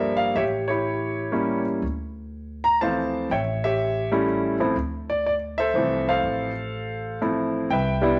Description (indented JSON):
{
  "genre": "jazz piano trio",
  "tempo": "122 BPM",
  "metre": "3/4",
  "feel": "swing 66% on 8ths",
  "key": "D minor",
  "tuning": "A4 = 440 Hz",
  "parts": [
    { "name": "clear grand piano", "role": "melody", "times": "0.0-8.2 s", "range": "E3 to Bb5", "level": "-25 LUFS", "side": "equal", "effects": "none" },
    { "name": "upright bass", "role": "bass", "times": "0.0-8.2 s", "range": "G1 to D2", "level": "-34 LUFS", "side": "equal", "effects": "none" }
  ],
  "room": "wet studio reverb, RT60 0.9 s",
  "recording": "none",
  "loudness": "-25 LUFS",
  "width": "mono",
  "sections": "0.0-7.7 A section",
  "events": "none",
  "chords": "0.3 A7b9; 1.8 Dm9; 3.3 A7; 4.8 Dm7"
}